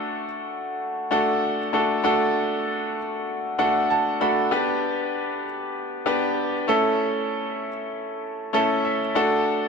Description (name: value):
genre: pop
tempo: 97 BPM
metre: 4/4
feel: straight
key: D major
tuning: A4 = 439 Hz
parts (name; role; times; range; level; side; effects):
- bright grand piano; solo; 0.0-9.7 s; A3 to B5; -22 LUFS; equal; none
room: moderate plate reverb, RT60 3.8 s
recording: none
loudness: -22 LUFS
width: side -5 dB against mid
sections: 0.0-9.7 A section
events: grand piano fill 3.3-4.5, 8.5-9.5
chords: 0.0 D/A; 4.5 G; 6.7 A; 9.2 D/A